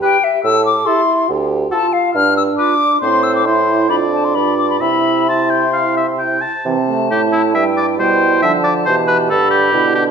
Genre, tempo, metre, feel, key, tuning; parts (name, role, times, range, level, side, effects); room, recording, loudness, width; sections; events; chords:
quick classical-period movement for wind quintet; 127-142 BPM; 4/4; rubato; C major; A4 = 440 Hz
silver concert flute; melody; 0.0-9.9 s; E5 to F6; -17 LUFS; left 6 dB
clear oboe; second line; 0.0-10.0 s; E4 to A5; -18 LUFS; left 1 dB
clear French horn; accompaniment; 0.0-10.1 s; D3 to A4; -20 LUFS; right 2 dB
mellow clarinet; accompaniment; 0.0-10.1 s; C4 to G4; -21 LUFS; right 12 dB
warm bassoon; bass; 0.4-10.1 s; D2 to D3; -20 LUFS; right 3 dB
moderate recital hall reverb, RT60 1.5 s; -12 LUFS; side -6 dB against mid
0.0-6.7 A section; 6.7-10.1 A section
0.4 Am7; 1.3 Dm; 2.2 G7(no3); 3.0 Am; 3.9 Dm/F; 4.3 G7; 4.8 C; 8.4 G7